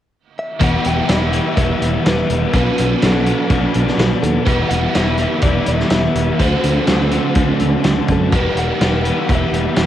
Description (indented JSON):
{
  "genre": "rock, shoegaze and dream pop",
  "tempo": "124 BPM",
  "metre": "4/4",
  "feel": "straight",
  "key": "E minor",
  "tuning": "A4 = 436 Hz",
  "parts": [
    { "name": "direct-recorded clean electric guitar", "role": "melody", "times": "0.4-9.9 s", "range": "A4 to G5", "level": "-25 LUFS", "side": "equal", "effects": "cassette tape, analog delay" },
    { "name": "phased analog pad", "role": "sustained chords", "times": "1.0-9.9 s", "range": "G4 to E6", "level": "-31 LUFS", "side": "equal", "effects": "none" },
    { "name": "biting overdriven guitar", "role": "riff", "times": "0.6-9.9 s", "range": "B2 to C5", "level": "-20 LUFS", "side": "right 8 dB", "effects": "reverse reverb, cassette tape" },
    { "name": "overdriven electric guitar", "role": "riff", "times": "0.6-9.9 s", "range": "E2 to G4", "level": "-20 LUFS", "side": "left 8 dB", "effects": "analog chorus, cassette tape" },
    { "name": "modern bright fingered electric bass", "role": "bass", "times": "0.6-9.9 s", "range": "E1 to F#2", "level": "-20 LUFS", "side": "equal", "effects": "none" },
    { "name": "loose indie drum kit", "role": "drums", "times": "0.6-9.9 s", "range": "hi-hat, kick drum, snare drum", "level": "-19 LUFS", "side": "equal", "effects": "cassette tape" }
  ],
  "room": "light reverb, small room ambience",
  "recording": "home recording on cassette",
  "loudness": "-14 LUFS",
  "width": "side -11 dB against mid",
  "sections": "0.6-9.9 A section",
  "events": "none",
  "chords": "0.0 N.C.; 0.6 Emadd9; 2.5 Bm; 4.5 Emadd9; 6.4 D7; 8.3 Emadd9",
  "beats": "0.12 | 0.61 1.09 1.57 2.06 | 2.54 3.02 3.50 3.99 | 4.47 4.95 5.43 5.92 | 6.40 6.88 7.37 7.85 | 8.33 8.81 9.29 9.78"
}